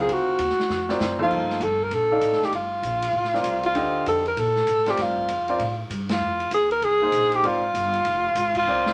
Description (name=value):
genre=modal jazz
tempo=196 BPM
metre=4/4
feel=swing 63% on 8ths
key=G minor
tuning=A4 = 440 Hz
part: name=warm alto saxophone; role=melody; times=0.0-8.9 s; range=F4 to Bb4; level=-24 LUFS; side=equal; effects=none
part: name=warm grand piano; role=accompaniment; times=0.0-8.9 s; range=D3 to E#5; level=-29 LUFS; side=equal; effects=none
part: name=upright bass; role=bass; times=0.0-8.9 s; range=F1 to Bb2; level=-36 LUFS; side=equal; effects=none
part: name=open jazz drum kit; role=drums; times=0.1-8.9 s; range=crash cymbal, hi-hat, kick drum, ride cymbal, snare drum, toms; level=-35 LUFS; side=equal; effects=none
room=moderate studio reverb, RT60 0.7 s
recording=none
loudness=-23 LUFS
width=mono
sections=0.0-1.3 A section; 1.3-8.9 B section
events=drum fill 0.7-1.3; band accent 6.1, 8.5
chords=0.1 D7alt; 1.3 Gm9; 6.2 Fm7